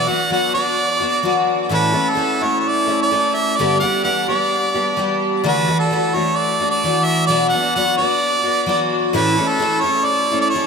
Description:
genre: rock.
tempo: 129 BPM.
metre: 4/4.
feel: straight.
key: unclear.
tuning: A4 = 435 Hz.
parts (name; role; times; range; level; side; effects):
clear harmonica; melody; 0.0-10.7 s; A4 to F#5; -18 LUFS; right 2 dB; analog delay.
picked twelve-string acoustic guitar; accompaniment; 0.0-10.7 s; G2 to A4; -19 LUFS; left 2 dB; none.
room: wet huge ambient reverb, RT60 3.8 s.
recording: dreamy mix soaked in reverb.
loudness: -15 LUFS.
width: side -5 dB against mid.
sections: 0.0-10.7 A section.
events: none.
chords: 0.0 Bm; 1.7 A; 3.6 G; 5.4 Dadd9; 7.3 Bm; 9.2 A.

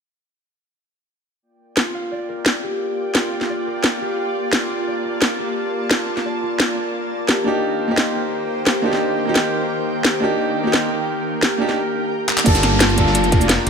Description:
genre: liquid drum and bass.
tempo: 174 BPM.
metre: 4/4.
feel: straight.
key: G minor.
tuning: A4 = 440 Hz.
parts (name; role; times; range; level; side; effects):
shimmering ambient pad; sustained chords; 2.0-13.7 s; Eb3 to A5; -25 LUFS; left 1 dB; chorus, built-in reverb, sidechain pumping.
concert harp; arpeggios; 1.8-13.7 s; F4 to C6; -25 LUFS; equal; vintage 12-bit sampler grit, low-pass filter, tape echo.
garage drum kit; drums; 1.8-13.7 s; crash cymbal, handclaps, hi-hat, shaker, snare drum; -20 LUFS; equal; none.
bright baby grand piano; accompaniment; 7.4-13.7 s; Bb3 to A4; -21 LUFS; right 2 dB; tape echo.
dark detuned saw bass; bass; 12.5-13.7 s; F1 to Bb1; -20 LUFS; equal; none.
crunchy breakbeat drum kit; drums; 12.5-13.7 s; ride cymbal, snare drum; -27 LUFS; equal; none.
electronic kick drum; drums; 12.5-13.4 s; none; -17 LUFS; equal; none.
downlifter; sound effects; 12.5-13.7 s; none; -24 LUFS; equal; none.
room: moderate lush hall reverb, RT60 1.9 s, studio ambience.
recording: none.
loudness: -17 LUFS.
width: side -6 dB against mid.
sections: 1.4-12.5 A section; 12.5-13.7 B section.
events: drum fill 12.3; drop 12.5-13.7.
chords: 1.4 Gm7; 6.9 Cm7; 12.5 Gm7.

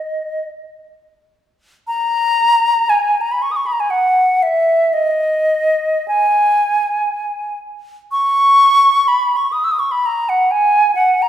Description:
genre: classical, free, expressive piece for unaccompanied flute.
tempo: 35-67 BPM.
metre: 3/4.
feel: rubato.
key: G# minor.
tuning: A4 = 440 Hz.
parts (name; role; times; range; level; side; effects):
silver concert flute; solo; 0.0-11.3 s; D#5 to E6; -13 LUFS; equal; none.
room: wet recital hall reverb, RT60 1.5 s.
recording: recorded in a church or concert hall.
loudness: -13 LUFS.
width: side -10 dB against mid.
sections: 0.0-1.9 A section; 1.9-11.3 A section.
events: none.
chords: none.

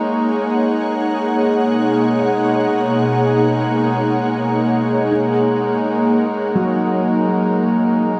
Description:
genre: ambient.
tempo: free time.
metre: none.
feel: none.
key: unclear.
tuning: A4 = 440 Hz.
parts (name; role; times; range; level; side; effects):
ethereal airy pad; sustained chords; 0.0-8.2 s; B2 to F#5; -19 LUFS; equal; ensemble chorus, built-in reverb.
hand-pumped harmonium; drone; 0.0-8.2 s; G#3 to D#4; -24 LUFS; equal; none.
felt-muted upright piano; arpeggios; 2.2-8.2 s; F#3 to C#5; -26 LUFS; equal; delay.
room: wet huge ambient reverb, RT60 7.9 s.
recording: none.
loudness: -17 LUFS.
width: mono.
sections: 0.0-8.2 A section.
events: fade-in on felt piano 0.0-8.2.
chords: 0.0 G#5; 1.2 Bmaj7; 5.1 D#m7.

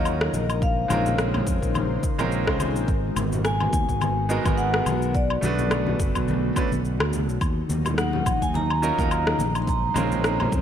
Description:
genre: sunset chillout.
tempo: 106 BPM.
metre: 4/4.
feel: swing 56% on 16ths.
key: G# dorian.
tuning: A4 = 438 Hz.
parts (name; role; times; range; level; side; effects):
vibraphone with medium mallets; melody; 0.0-10.5 s; D5 to B#5; -29 LUFS; equal; ping-pong delay.
clear concert grand piano; accompaniment; 0.0-10.6 s; F#3 to B#4; -29 LUFS; right 3 dB; auto-pan, digital delay.
airy breathy pad; sustained chords; 0.0-10.6 s; C#3 to B#4; -29 LUFS; left 1 dB; chorus.
fingered electric bass; bass; 0.0-10.6 s; F#1 to E#2; -26 LUFS; equal; none.
electronic woodblock, shaker and rim click; drums; 0.1-10.6 s; none; -29 LUFS; left 1 dB; overdrive, gated reverb.
congas; percussion; 0.3-10.5 s; none; -32 LUFS; left 2 dB; none.
electronic kick drum; drums; 0.6-10.6 s; none; -26 LUFS; equal; overdrive.
room: moderate lush hall reverb, RT60 1.8 s, small room ambience.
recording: bright 1980s-style digital production.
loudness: -21 LUFS.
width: side -9 dB against mid.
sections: 0.0-10.6 A section.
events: none.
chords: 0.3 A#m9; 2.9 G#m9; 5.1 Bm7; 7.4 D#m9; 9.4 A#m9.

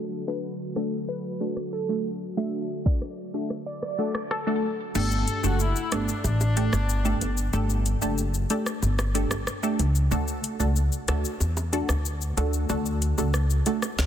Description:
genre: dancehall.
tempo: 93 BPM.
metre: 4/4.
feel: straight.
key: D major.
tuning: A4 = 439 Hz.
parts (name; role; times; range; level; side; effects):
punchy chord stab; accompaniment; 0.0-13.9 s; A3 to A4; -29 LUFS; right 1 dB; chorus, phaser.
airy breathy pad; sustained chords; 0.0-4.9 s; D3 to A4; -36 LUFS; left 1 dB; chorus, sidechain pumping.
analog pluck; melody; 0.3-4.8 s; A4 to E5; -34 LUFS; equal; chorus, ping-pong delay.
afro-pop drum kit; drums; 0.8-14.1 s; crash cymbal, hi-hat, kick drum, rim click, shaker, snare drum; -30 LUFS; left 1 dB; soft clipping on snare.
clear horn section; second line; 5.0-7.5 s; D4 to A4; -32 LUFS; left 4 dB; ping-pong delay.
upright bass; bass; 5.0-14.1 s; F#1 to E2; -25 LUFS; equal; none.
bongos; percussion; 5.0-14.1 s; none; -40 LUFS; right 4 dB; none.
room: light reverb, digital ambience.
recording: dense, heavily limited modern master, low-pass filter.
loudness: -24 LUFS.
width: side -10 dB against mid.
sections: 0.0-5.0 A section; 5.0-14.1 B section.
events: filter sweep 0.0-5.0; kick muted 3.7-5.0, 5.0-14.1.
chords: 0.0 D; 5.0 Gsus2; 10.1 D.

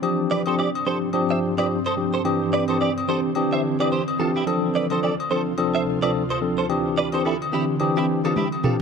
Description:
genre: afrobeats.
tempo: 108 BPM.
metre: 4/4.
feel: swing 58% on 16ths.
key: C major.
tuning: A4 = 442 Hz.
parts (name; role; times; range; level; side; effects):
tine electric piano; accompaniment; 0.0-8.8 s; E3 to A4; -23 LUFS; left 1 dB; medium stereo tremolo.
ethereal airy pad; sustained chords; 0.0-8.8 s; D2 to F4; -28 LUFS; right 1 dB; ensemble chorus, built-in reverb, tremolo.
agogo bells and woodblock; percussion; 0.0-8.6 s; none; -30 LUFS; left 8 dB; none.
direct-recorded clean electric guitar; riff; 0.3-8.7 s; E4 to E5; -26 LUFS; right 4 dB; ensemble chorus, tape echo.
electronic toms; drums; 8.4-8.8 s; none; -23 LUFS; equal; none.
room: light reverb, digital ambience.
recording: none.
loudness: -20 LUFS.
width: side -6 dB against mid.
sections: 0.0-8.8 A section.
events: drum fill 8.4-8.8.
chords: 0.0 G7sus4; 2.2 Cadd9; 4.5 Dm7; 6.7 Cadd9.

